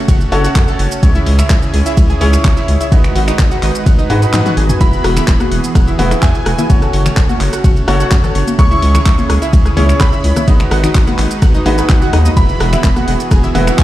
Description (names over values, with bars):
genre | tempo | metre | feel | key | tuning
progressive house | 127 BPM | 4/4 | straight | F# dorian | A4 = 442 Hz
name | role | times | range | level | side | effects
warm analog pad | sustained chords | 0.0-13.8 s | C#3 to B4 | -22 LUFS | right 1 dB | chorus, tremolo, sidechain pumping
analog pluck | arpeggios | 0.0-13.8 s | D#4 to A6 | -22 LUFS | equal | lush chorus, sidechain pumping, dub echo
bright grand piano | stabs | 0.0-13.8 s | C#4 to C#5 | -20 LUFS | equal | sidechain pumping, dub echo
round analog bass | bass | 0.1-13.8 s | E1 to G#2 | -14 LUFS | equal | sidechain pumping
deep house drum kit | drums | 0.1-13.8 s | finger snaps, handclaps, hi-hat, ride cymbal, shaker, toms | -22 LUFS | equal | overdrive
electronic kick drum | drums | 0.1-13.8 s | none | -11 LUFS | equal | overdrive
glassy synth bell | melody | 4.8-13.8 s | G#5 to C#6 | -25 LUFS | right 1 dB | chorus, dub echo
soft supersaw | second line | 4.8-13.8 s | G#5 to C#6 | -28 LUFS | equal | cassette tape, sidechain pumping, dub echo
electronic rim click and congas | percussion | 5.0-13.8 s | none | -21 LUFS | left 2 dB | sidechain pumping on snare, sidechain pumping on perc
room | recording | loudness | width
light reverb, digital ambience | played on a big sound system in a bare room, large studio reverb | -9 LUFS | side -14 dB against mid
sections
0.0-13.8 A section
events
kick drops out 4.3-4.8; drum fill 4.3-4.8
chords
0.0 F#m; 1.0 C#m; 2.9 G#m7; 4.8 Eadd9; 6.7 F#m; 8.6 C#m; 10.5 G#m7; 12.4 Eadd9